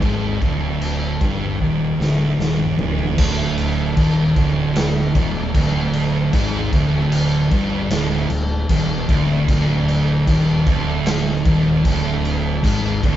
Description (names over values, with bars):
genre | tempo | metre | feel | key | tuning
stoner and doom metal | 76 BPM | 4/4 | straight | unclear | A4 = 441 Hz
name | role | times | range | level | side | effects
thick fuzz guitar | riff | 0.0-13.2 s | D2 to G#2 | -22 LUFS | left 5 dB | distortion
thick fuzz guitar | riff | 0.0-13.2 s | D2 to G#2 | -20 LUFS | right 5 dB | distortion
fuzz fingered electric bass | bass | 0.0-13.2 s | D1 to G#1 | -26 LUFS | equal | overdrive
raw garage drum kit | drums | 0.0-13.2 s | crash cymbal, kick drum, snare drum, toms | -21 LUFS | equal | none
room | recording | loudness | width
moderate studio reverb, RT60 0.6 s | band playing live in one room, nothing above 7.6 kHz | -16 LUFS | side -12 dB against mid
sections
0.0-3.2 A section; 3.2-13.2 B section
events
drum fill 1.6-3.2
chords
0.0 Ebmaj7/D; 3.2 Ebmaj7(no3)/D